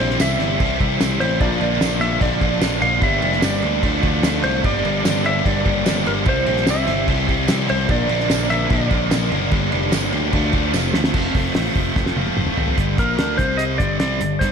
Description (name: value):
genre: classic rock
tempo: 148 BPM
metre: 4/4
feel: straight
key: unclear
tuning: A4 = 445 Hz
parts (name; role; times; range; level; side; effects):
- clean lap steel guitar; melody; 0.0-14.5 s; Bb4 to F5; -23 LUFS; right 1 dB; slapback echo
- biting overdriven guitar; riff; 0.0-14.5 s; F2 to G4; -23 LUFS; right 11 dB; tremolo, slapback echo
- sludgy distorted guitar; riff; 0.0-14.5 s; F2 to Bb4; -23 LUFS; left 10 dB; overdrive, slapback echo
- overdriven picked electric bass; bass; 0.0-14.5 s; F1 to D2; -23 LUFS; equal; none
- cloth-damped thuddy drum kit; drums; 0.1-14.5 s; crash cymbal, hi-hat, kick drum, snare drum, toms; -22 LUFS; equal; none
- tambourine; percussion; 0.2-10.8 s; none; -35 LUFS; right 14 dB; none
room: moderate lush hall reverb, RT60 1.8 s, studio ambience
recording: big arena sound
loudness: -16 LUFS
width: side -6 dB against mid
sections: 0.0-11.1 A section; 11.1-12.8 B section; 12.8-14.5 C section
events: drum fill 10.7-11.1, 12.0-12.8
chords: 0.0 C; 1.4 Bb; 3.0 Gm; 3.8 Dm; 4.6 Gm; 6.3 C; 7.9 Bb; 9.5 Gm; 10.3 Dm; 10.7 F; 12.8 Gm; 13.4 C5; 13.8 G5